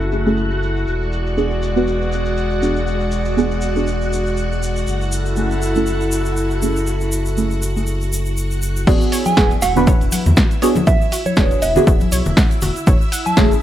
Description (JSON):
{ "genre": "deep house", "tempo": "120 BPM", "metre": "4/4", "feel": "swing 56% on 16ths", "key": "unclear", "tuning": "A4 = 440 Hz", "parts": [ { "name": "airy breathy pad", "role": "sustained chords", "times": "0.0-8.8 s", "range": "G#3 to D5", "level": "-23 LUFS", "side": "equal", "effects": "chorus, sidechain pumping" }, { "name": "sub bass with octave", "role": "bass", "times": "0.0-13.5 s", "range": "E1 to E2", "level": "-21 LUFS", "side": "equal", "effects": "sidechain pumping" }, { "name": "egg shaker", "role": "percussion", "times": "0.0-13.6 s", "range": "none", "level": "-30 LUFS", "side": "equal", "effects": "none" }, { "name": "string machine, violins", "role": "texture", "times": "0.0-13.6 s", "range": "E4 to F#5", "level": "-28 LUFS", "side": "left 1 dB", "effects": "ensemble chorus, sidechain pumping" }, { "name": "deep mellow chord stab", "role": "stabs", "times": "0.1-13.5 s", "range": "A3 to B4", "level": "-20 LUFS", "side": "right 2 dB", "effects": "chorus, phaser, sidechain pumping, tape echo" }, { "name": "analog pluck", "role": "arpeggios", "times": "8.9-13.4 s", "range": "F#4 to F#5", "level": "-30 LUFS", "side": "right 1 dB", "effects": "chorus, sidechain pumping, tape echo" }, { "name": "electronic kick drum", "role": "drums", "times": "8.9-13.5 s", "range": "none", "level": "-15 LUFS", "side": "equal", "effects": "vintage 12-bit sampler grit" }, { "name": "punchy analog drum machine", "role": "drums", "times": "8.9-13.6 s", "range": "crash cymbal, hi-hat, snare drum", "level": "-21 LUFS", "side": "equal", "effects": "low-pass filter on hats, vintage 12-bit sampler grit, low-pass filter on cymbals, low-pass filter on snare, low-pass filter on room" }, { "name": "soft synth bell", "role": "melody", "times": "9.3-13.6 s", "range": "C#5 to A5", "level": "-21 LUFS", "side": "right 3 dB", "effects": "chorus, phaser, tape echo" }, { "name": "congas", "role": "percussion", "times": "9.3-13.4 s", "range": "none", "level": "-23 LUFS", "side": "left 3 dB", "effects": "none" } ], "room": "light reverb", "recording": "low-pass filter", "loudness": "-15 LUFS", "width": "side -12 dB against mid", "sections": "0.0-8.9 A section; 8.9-13.6 B section", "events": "filter sweep 0.0-8.9; drop 8.9-13.6", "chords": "0.0 F#m9; 0.9 E9; 4.9 F#m9; 8.9 E9; 12.9 F#m9", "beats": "0.37 | 0.87 1.37 1.87 2.37 | 2.87 3.37 3.87 4.37 | 4.87 5.37 5.87 6.37 | 6.87 7.37 7.87 8.37 | 8.87 9.37 9.87 10.37 | 10.87 11.37 11.87 12.37 | 12.87 13.37" }